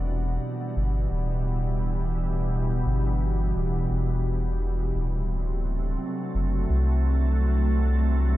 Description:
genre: ambient dub.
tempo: 86 BPM.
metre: 4/4.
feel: straight.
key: E minor.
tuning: A4 = 439 Hz.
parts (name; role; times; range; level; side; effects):
soft additive organ-like pad; sustained chords; 0.0-8.4 s; B2 to F#4; -28 LUFS; right 1 dB; ensemble chorus, built-in reverb.
soft dub sub bass; bass; 0.0-8.4 s; D1 to C2; -24 LUFS; equal; none.
room: light reverb.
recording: nothing above 10.5 kHz.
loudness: -23 LUFS.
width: side -15 dB against mid.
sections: 0.0-8.4 A section.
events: none.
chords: 0.0 Em9; 5.0 D7.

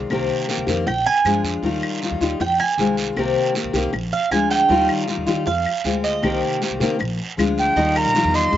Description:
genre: latin, Cuban son and guajira.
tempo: 157 BPM.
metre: 4/4.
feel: straight.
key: Eb major.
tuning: A4 = 436 Hz.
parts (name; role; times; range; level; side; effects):
fingerpicked steel-string acoustic guitar; accompaniment; 0.0-8.6 s; C3 to G4; -21 LUFS; left 3 dB; slapback echo.
upright bass; bass; 0.0-8.6 s; Bb1 to Eb3; -27 LUFS; right 1 dB; none.
claves; percussion; 0.1-8.1 s; none; -29 LUFS; left 3 dB; none.
guiro; percussion; 0.1-8.6 s; none; -31 LUFS; right 5 dB; none.
Cuban tres; arpeggios; 0.9-8.6 s; Eb4 to Ab5; -20 LUFS; right 5 dB; slapback echo.
breathy concert flute; melody; 7.6-8.6 s; G5 to C6; -18 LUFS; right 1 dB; none.
room: little or no reverb.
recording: recorded outdoors, with no room sound, nothing above 7.7 kHz.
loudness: -18 LUFS.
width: side -11 dB against mid.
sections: 0.0-7.8 A section.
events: Cuban tres solo 0.0-7.8.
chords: 0.1 Cm7; 0.9 Bb7; 1.6 Ebadd9; 2.4 Fm7; 3.2 Cm7; 3.9 Bb7; 4.7 Ebadd9; 5.5 Fm; 6.2 Cm7; 7.0 Bb7; 7.8 Ebadd9.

